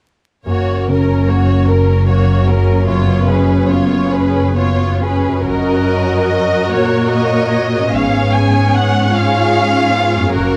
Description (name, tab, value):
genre	classical, slow romantic movement for symphony orchestra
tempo	43-51 BPM (dotted quarters)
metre	6/8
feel	rubato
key	F# major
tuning	A4 = 440 Hz
part	rich studio violin section	melody	0.5-10.6 s	A#4 to G#5	-22 LUFS	equal	none
part	warm studio violin section	second line	0.5-10.6 s	E#4 to D#5	-24 LUFS	equal	none
part	rich studio viola section	accompaniment	0.5-10.6 s	A#3 to F#4	-22 LUFS	equal	none
part	concert harp	arpeggios	0.5-10.6 s	F#2 to C#5	-22 LUFS	equal	none
part	dark studio double bass section	bass	0.5-10.6 s	F#1 to G#1	-20 LUFS	equal	none
part	rich studio cello section	bass	0.5-10.6 s	F#2 to A#2	-20 LUFS	equal	none
room	moderate scoring stage reverb, RT60 1.7 s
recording	close, detailed microphones, vinyl crackle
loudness	-14 LUFS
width	mono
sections	0.5-5.5 A section; 5.5-10.6 B section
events	none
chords	0.5 F#; 2.9 C#7/F#; 5.5 F#; 7.9 C#7/G#